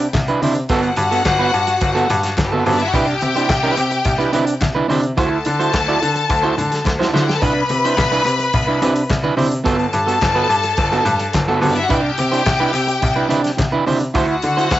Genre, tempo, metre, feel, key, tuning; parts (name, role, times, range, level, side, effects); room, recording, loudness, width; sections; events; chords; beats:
disco; 107 BPM; 4/4; straight; G major; A4 = 440 Hz
clear studio string section; second line; 0.0-14.8 s; G3 to B5; -20 LUFS; left 3 dB
electric guitar at the edge of break-up; accompaniment; 0.0-14.8 s; B3 to D5; -20 LUFS; right 4 dB
bright grand piano; bass; 0.0-14.8 s; G1 to D3; -20 LUFS; equal
warm soul drum kit; drums; 0.0-14.8 s; hi-hat, kick drum, snare drum; -23 LUFS; equal
congas; percussion; 0.1-14.8 s; -26 LUFS; left 3 dB
group handclap; percussion; 0.1-14.8 s; -29 LUFS; left 4 dB
studio ambience; home recording on cassette, nothing above 7.9 kHz; -14 LUFS; side -14 dB against mid
0.0-14.8 A section
drum fill 6.9-7.4
0.0 Cmaj9; 0.7 Gmaj9; 2.9 Cmaj9; 5.2 D9; 7.4 Cmaj9; 9.7 Gmaj9; 11.9 Cmaj9; 14.2 D9
0.14 | 0.70 1.26 1.82 2.38 | 2.94 3.50 4.06 4.62 | 5.18 5.74 6.30 6.86 | 7.42 7.98 8.54 9.10 | 9.66 10.22 10.78 11.34 | 11.90 12.47 13.03 13.59 | 14.15 14.71